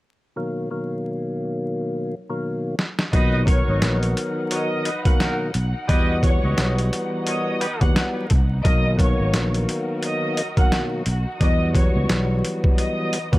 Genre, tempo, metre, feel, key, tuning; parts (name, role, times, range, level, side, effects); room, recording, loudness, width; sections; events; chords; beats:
hip hop, boom-bap hip-hop; 87 BPM; 4/4; swing 58% on 16ths; B major; A4 = 440 Hz
percussive tonewheel organ; accompaniment; 0.4-13.4 s; A#2 to A#4; -26 LUFS; left 1 dB; overdrive, slow rotary speaker, cassette tape, high-pass filter, low-pass filter
boom bap sampler-style drum kit; drums; 2.8-13.4 s; hi-hat, kick drum, snare drum; -20 LUFS; equal
warm studio violin section; melody; 3.1-13.4 s; C#5 to F#6; -28 LUFS; equal; high-pass filter, low-pass filter, digital delay
warm studio string section; sustained chords; 3.1-13.4 s; D#3 to F#5; -35 LUFS; left 1 dB; high-pass filter, low-pass filter
warm horn section; stabs; 3.1-7.9 s; B3 to D#5; -32 LUFS; equal; high-pass filter, low-pass filter, digital delay
fretless electric bass; bass; 3.1-13.4 s; G#1 to E2; -22 LUFS; equal
small room ambience; vinyl crackle; -19 LUFS; side -18 dB against mid
0.4-3.1 A section; 3.1-13.4 B section
drum fill 2.4-3.1
0.4 Bmaj7; 5.9 Emadd9; 8.6 Bmaj7; 11.4 Emadd9
| 0.37 1.06 1.75 2.44 | 3.13 3.82 4.51 5.20 | 5.89 6.58 7.27 7.96 | 8.65 9.34 10.03 10.72 | 11.41 12.10 12.79